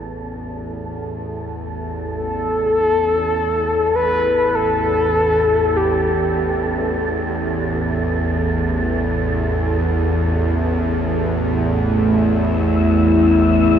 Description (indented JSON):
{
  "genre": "dark ambient drone",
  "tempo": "free time",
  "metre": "none",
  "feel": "none",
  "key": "unclear",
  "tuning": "A4 = 437 Hz",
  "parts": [
    { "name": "bowed-like drone", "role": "drone", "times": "0.0-13.8 s", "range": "A1 to E2", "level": "-20 LUFS", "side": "equal", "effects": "built-in reverb" },
    { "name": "wind-like tuned noise texture", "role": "texture", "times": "0.0-13.8 s", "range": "A4 to E5", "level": "-27 LUFS", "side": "right 3 dB", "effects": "built-in reverb" },
    { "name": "mellow horn-like synth lead", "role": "melody", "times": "2.1-6.7 s", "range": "G4 to B4", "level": "-18 LUFS", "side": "left 2 dB", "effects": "chorus, tape echo" },
    { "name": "dark analog pad", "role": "sustained chords", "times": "11.7-13.8 s", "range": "A3 to E4", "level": "-15 LUFS", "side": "equal", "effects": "chorus" }
  ],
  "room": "wet huge ambient reverb, RT60 7.7 s",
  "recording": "none",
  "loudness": "-16 LUFS",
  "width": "side -8 dB against mid",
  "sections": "0.0-13.8 A section",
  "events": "fade-in on synth drone 0.0-13.8; fade-in on synth texture 0.0-13.8",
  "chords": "0.0 A5"
}